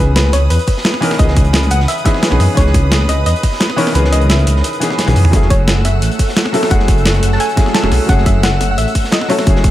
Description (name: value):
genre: liquid drum and bass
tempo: 174 BPM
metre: 4/4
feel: straight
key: F# dorian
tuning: A4 = 440 Hz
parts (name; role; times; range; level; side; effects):
- soft round pluck; melody; 0.0-9.6 s; B4 to A5; -21 LUFS; left 1 dB; chorus, digital delay
- felt-muted upright piano; accompaniment; 0.0-9.7 s; D#3 to A#4; -19 LUFS; left 1 dB; dub echo
- lush unison pad; sustained chords; 0.0-9.7 s; A3 to E6; -22 LUFS; right 2 dB; chorus, sidechain pumping
- dark detuned saw bass; bass; 0.0-9.7 s; E1 to F#2; -13 LUFS; equal; none
- breakbeat sampler-style drum kit; drums; 0.2-9.7 s; hi-hat, snare drum, toms; -17 LUFS; equal; overdrive
- crunchy breakbeat drum kit; drums; 0.2-9.7 s; hi-hat, snare drum; -26 LUFS; equal; high-pass filter on hats, high-pass filter on snare, high-pass filter on room
- electronic kick drum; drums; 0.7-9.7 s; none; -13 LUFS; equal; none
room: little or no reverb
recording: none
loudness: -10 LUFS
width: side -14 dB against mid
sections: 0.0-5.3 A section; 5.3-9.7 A section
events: drop 0.0-5.3, 5.3-9.7; kick drops out 4.0-5.3; drum fill 5.0-5.3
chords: 0.0 C#m9; 5.3 F#m9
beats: 0.16 0.50 0.85 | 1.19 1.54 1.88 2.23 | 2.57 2.92 3.26 3.61 | 3.95 4.30 4.64 4.99 | 5.33 5.68 6.02 6.37 | 6.71 7.06 7.40 7.75 | 8.09 8.44 8.78 9.12 | 9.47